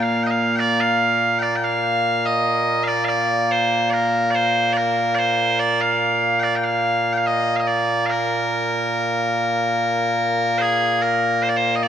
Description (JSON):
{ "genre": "scottish traditional, Scottish pipe music", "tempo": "72 BPM", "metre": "3/4", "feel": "straight", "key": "Bb major", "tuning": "A4 = 440 Hz", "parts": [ { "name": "loud bright bagpipes", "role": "solo", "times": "0.0-11.9 s", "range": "Bb2 to G5", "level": "-17 LUFS", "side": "equal", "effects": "none" } ], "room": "moderate concert hall reverb, RT60 1.9 s", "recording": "none", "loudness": "-17 LUFS", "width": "side -9 dB against mid", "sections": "0.0-10.6 A section; 10.6-11.9 B section", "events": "none", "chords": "none", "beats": "| 0.59 1.42 2.25 | 3.09 3.92 4.75 | 5.59 6.42 7.25 | 8.09 8.92 9.75 | 10.59 11.42" }